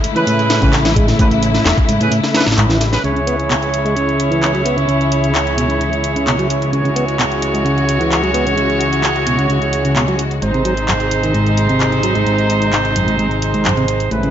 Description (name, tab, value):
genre	breakbeat, breaks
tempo	130 BPM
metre	4/4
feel	straight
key	unclear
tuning	A4 = 441 Hz
part	dark studio string section	sustained chords	0.0-14.3 s	B#2 to F#4	-20 LUFS	left 3 dB	vintage 12-bit sampler grit, sidechain pumping, low-pass filter
part	breakbeat sampler-style drum kit	drums	0.0-3.0 s	hi-hat, kick drum, snare drum	-16 LUFS	left 1 dB	none
part	garage drum kit	drums	0.0-14.3 s	handclaps, hi-hat	-22 LUFS	left 1 dB	none
part	tonewheel organ	riff	0.2-14.3 s	F#2 to B3	-19 LUFS	right 1 dB	stopped rotary speaker, overdrive, vintage 12-bit sampler grit, low-pass filter
part	clear horn section	stabs	0.2-14.3 s	B#3 to C#5	-19 LUFS	right 4 dB	low-pass filter, dub echo
part	fat analog bass	bass	0.6-14.3 s	E1 to C#2	-21 LUFS	equal	none
room	light reverb, digital ambience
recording	nothing above 7.6 kHz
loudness	-13 LUFS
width	side -10 dB against mid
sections	0.0-3.0 A section; 3.0-14.3 B section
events	filter sweep on tonewheel organ 3.0-14.3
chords	0.0 Amaj7; 3.0 C#m; 10.4 G#